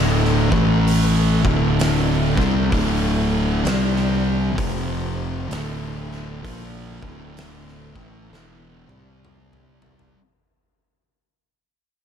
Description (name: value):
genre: stoner and doom metal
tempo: 65 BPM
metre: 4/4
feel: swing 62% on 8ths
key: D minor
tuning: A4 = 440 Hz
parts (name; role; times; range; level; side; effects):
- tonewheel organ; sustained chords; 0.0-10.2 s; C3 to B4; -32 LUFS; equal; overdrive, chorus vibrato, fast rotary speaker
- thick fuzz guitar; riff; 0.0-10.2 s; D2 to C4; -23 LUFS; left 8 dB; distortion
- thick fuzz guitar; riff; 0.0-10.2 s; D2 to C4; -23 LUFS; right 9 dB; distortion
- fuzz fingered electric bass; bass; 0.0-10.1 s; D1 to C2; -26 LUFS; equal; overdrive
- oversized low-tuned drum kit; drums; 0.2-10.2 s; hi-hat, kick drum, snare drum, toms; -26 LUFS; equal; none
room: moderate studio reverb, RT60 0.8 s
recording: none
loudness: -17 LUFS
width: side -8 dB against mid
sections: 0.0-10.2 A section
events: fade-out 0.0-10.2; drum fill 8.3-10.2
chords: 0.4 A5; 1.3 D5; 3.6 C5; 4.6 F5; 5.5 Dm; 8.8 C5